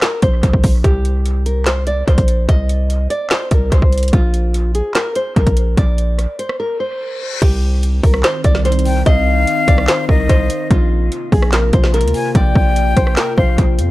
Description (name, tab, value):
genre	hip hop, trap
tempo	146 BPM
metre	4/4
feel	half-time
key	C minor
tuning	A4 = 439 Hz
part	nylon-string guitar	melody	0.0-13.9 s	F4 to Eb5	-21 LUFS	equal	low-pass filter, dub echo
part	trap drum kit	drums	0.0-13.9 s	crash cymbal, handclaps, hi-hat, kick drum, rim click, snare drum	-16 LUFS	equal	none
part	hard-hitting 808-style bass	bass	0.2-13.9 s	Bb1 to F2	-15 LUFS	equal	none
part	reverse cymbal	sound effects	6.9-7.4 s	none	-28 LUFS	left 7 dB	none
part	warbly tape-like pad	sustained chords	8.0-13.9 s	C3 to F4	-23 LUFS	equal	chorus, built-in reverb
part	breathy concert flute	second line	8.9-13.6 s	Eb5 to Ab5	-20 LUFS	left 5 dB	dub echo
room	little or no reverb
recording	echo-heavy mix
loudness	-12 LUFS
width	side -18 dB against mid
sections	0.0-7.4 A section; 7.4-13.9 B section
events	break 6.6-7.4; reverse cymbal 6.9-7.4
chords	0.0 Bbsus2; 0.8 N.C.; 4.1 Bbsus2; 7.4 Cm; 10.7 Bbsus2